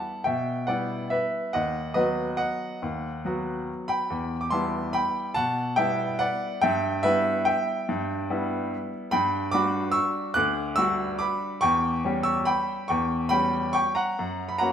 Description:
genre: classical, piano waltz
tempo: 142 BPM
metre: 3/4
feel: rubato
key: E minor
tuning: A4 = 438 Hz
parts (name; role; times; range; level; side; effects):
- clear baby grand piano; solo; 0.0-14.7 s; D2 to F#6; -24 LUFS; equal; none
room: wet recital hall reverb, RT60 1.4 s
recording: minimal, uncompressed stereo recording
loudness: -24 LUFS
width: side -8 dB against mid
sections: 0.0-14.7 A section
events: none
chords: 0.0 Em; 1.5 B/D#; 4.1 Em; 6.6 Em/G; 9.1 Gmaj7; 11.6 C#dim/E; 14.2 F#

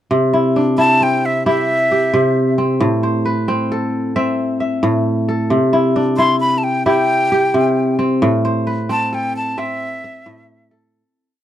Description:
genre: west african traditional, West African string and xylophone music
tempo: 89 BPM (dotted quarters)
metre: 12/8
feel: straight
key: C major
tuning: A4 = 441 Hz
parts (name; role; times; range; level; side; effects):
- kora; arpeggios; 0.1-11.4 s; A2 to E5; -15 LUFS; equal; none
- breathy bright jazz flute; melody; 0.8-10.7 s; E5 to C6; -17 LUFS; equal; none
room: small room ambience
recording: dry, close 1970s-style studio recording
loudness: -14 LUFS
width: side -11 dB against mid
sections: 0.1-11.0 A section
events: fade-out 8.2-11.0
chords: 0.1 C; 2.8 Am; 5.5 C; 8.2 Am

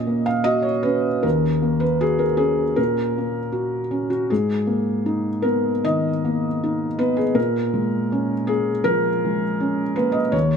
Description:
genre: neoclassical minimalist piano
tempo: 79 BPM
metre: 4/4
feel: rubato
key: Eb minor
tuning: A4 = 444 Hz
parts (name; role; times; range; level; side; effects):
- felt-muted upright piano; solo; 0.0-10.6 s; Eb2 to F5; -19 LUFS; equal; none
room: light reverb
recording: close, detailed microphones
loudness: -19 LUFS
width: side -6 dB against mid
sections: 0.0-10.6 A section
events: none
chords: 0.0 Ebm7; 4.3 Abmadd9; 7.4 Bbm7

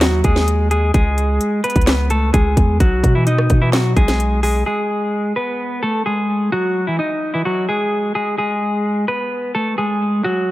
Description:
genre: hip hop, trap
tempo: 129 BPM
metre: 4/4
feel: half-time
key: unclear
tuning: A4 = 440 Hz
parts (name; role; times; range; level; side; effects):
- semi-hollow electric guitar; melody; 0.0-10.5 s; E3 to D#5; -18 LUFS; equal; spring reverb, low-pass filter, ping-pong delay
- long sustained 808-style bass; bass; 0.0-4.6 s; B1 to B2; -17 LUFS; equal; none
- trap drum kit; drums; 0.0-4.5 s; handclaps, hi-hat, kick drum, rim click, snare drum; -17 LUFS; equal; none
room: light reverb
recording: none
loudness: -15 LUFS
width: side -16 dB against mid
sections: 0.0-4.7 A section; 4.7-10.5 B section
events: none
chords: 0.0 G#5; 0.9 C#m; 2.8 Bsus4; 4.7 G#m; 6.5 G#5; 8.4 G#m

